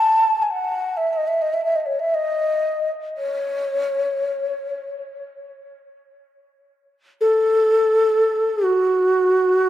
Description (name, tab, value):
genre	world meditative, free-time meditation music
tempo	free time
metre	none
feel	none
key	F# dorian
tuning	A4 = 441 Hz
part	breathy reedy low xiao	solo	0.0-9.7 s	F#4 to A5	-18 LUFS	equal	dub echo
room	wet spring reverb, RT60 2.2 s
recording	echo-heavy mix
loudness	-18 LUFS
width	side -12 dB against mid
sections	0.0-9.7 A section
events	none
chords	none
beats	free time